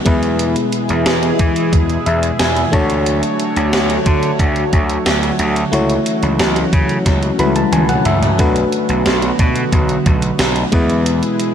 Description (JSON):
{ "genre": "1980s-style pop", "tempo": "90 BPM", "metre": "4/4", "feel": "straight", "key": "B dorian", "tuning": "A4 = 441 Hz", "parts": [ { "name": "FM electric piano", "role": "accompaniment", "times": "0.0-11.5 s", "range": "G#3 to B5", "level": "-19 LUFS", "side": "left 2 dB", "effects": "chorus" }, { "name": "phased analog pad", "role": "sustained chords", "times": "0.0-11.5 s", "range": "B2 to C#5", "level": "-20 LUFS", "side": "right 1 dB", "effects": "phaser, chorus" }, { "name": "gritty slap bass", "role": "bass", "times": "0.1-11.2 s", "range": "B1 to E3", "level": "-18 LUFS", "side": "equal", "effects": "overdrive" }, { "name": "gated 80s digital drum machine", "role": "drums", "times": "0.1-11.5 s", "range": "hi-hat, kick drum, snare drum, toms", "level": "-17 LUFS", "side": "equal", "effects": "gated reverb, gated reverb snare" } ], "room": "moderate huge ambient reverb, RT60 6.5 s", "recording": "dreamy mix soaked in reverb", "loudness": "-13 LUFS", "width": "side -8 dB against mid", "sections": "0.0-11.5 A section", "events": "FM electric piano fill 1.7-3.1, 7.1-8.4; drum fill 7.1-8.4", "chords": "0.1 E; 2.7 Dmaj7; 5.7 F#m7/C#; 8.4 Bm7; 10.7 E" }